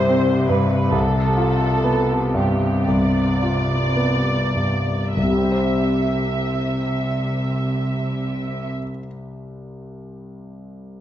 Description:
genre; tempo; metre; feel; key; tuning
classical, romantic movement for piano and orchestra; 47-75 BPM; 4/4; rubato; C major; A4 = 440 Hz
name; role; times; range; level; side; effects
clear concert grand piano; melody; 0.0-11.0 s; C2 to C5; -21 LUFS; left 1 dB; none
muted studio violin section; melody; 0.0-8.7 s; G4 to E5; -25 LUFS; right 2 dB; none
muted studio cello section; bass; 0.0-8.7 s; C3; -24 LUFS; equal; none
room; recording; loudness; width
moderate recital hall reverb, RT60 1.4 s; dark, warm production, nothing above 7.9 kHz; -18 LUFS; side -11 dB against mid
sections
0.0-5.2 A section; 5.2-9.6 B section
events
slowing down 0.0-5.2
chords
0.0 C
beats
0.10 | 0.93 1.84 2.88 3.96 | 5.17 6.30 7.41 8.49

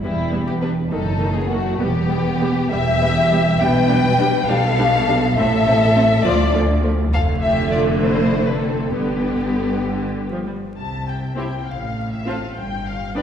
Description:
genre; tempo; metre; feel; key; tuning
quick classical-period movement for string orchestra; 68 BPM (dotted quarters); 6/8; straight; unclear; A4 = 444 Hz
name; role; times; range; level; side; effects
rich studio violin section; melody; 0.0-13.2 s; G3 to A5; -27 LUFS; left 6 dB; none
rich studio violin section; second line; 0.0-13.2 s; E4 to G5; -21 LUFS; left 2 dB; none
rich studio viola section; accompaniment; 0.0-13.2 s; D3 to F4; -23 LUFS; right 1 dB; none
clear studio cello section; bass; 0.0-13.2 s; D2 to C3; -23 LUFS; right 1 dB; none
warm studio double bass section; bass; 0.0-13.2 s; E1 to D2; -24 LUFS; equal; none
room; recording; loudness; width
wet concert hall reverb, RT60 2.0 s; heard from further back in the room, vinyl crackle; -16 LUFS; side -8 dB against mid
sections
0.0-10.8 A section; 10.8-13.2 B section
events
none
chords
0.0 Em; 0.9 D#dim/F#; 1.8 Em; 3.6 G/B; 5.4 Am; 6.3 Dm; 7.1 Dm/F; 8.9 G; 10.8 C; 11.7 F/A; 12.6 N.C.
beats
| 0.03 0.92 | 1.80 2.71 | 3.60 4.49 | 5.37 6.25 | 7.13 8.03 | 8.94 9.86 | 10.78 11.68 | 12.58

